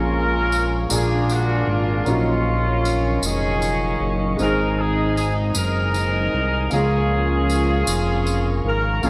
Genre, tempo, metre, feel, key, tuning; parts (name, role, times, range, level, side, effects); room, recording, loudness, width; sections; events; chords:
slow gospel; 52 BPM (dotted quarters); 6/8; straight; Db major; A4 = 440 Hz
clear horn section; melody; 0.0-9.1 s; Db4 to Bb4; -26 LUFS; equal
warm upright piano; accompaniment; 0.0-9.1 s; Ab2 to F5; -28 LUFS; equal
dark French horn section; sustained chords; 0.0-9.0 s; Eb3 to Eb4; -35 LUFS; equal
mellow tonewheel organ; sustained chords; 0.0-9.1 s; Bb4 to Eb6; -32 LUFS; equal; slow rotary speaker
fat analog bass; bass; 0.0-9.1 s; F1 to Db2; -24 LUFS; equal
tambourine; percussion; 0.5-9.1 s; -34 LUFS; equal
moderate concert hall reverb, RT60 2.3 s; -20 LUFS; mono
0.0-9.0 A section
0.0 Bbm7; 0.9 Bb7; 2.1 Ebm7/Bb; 4.4 Ab; 6.7 Db6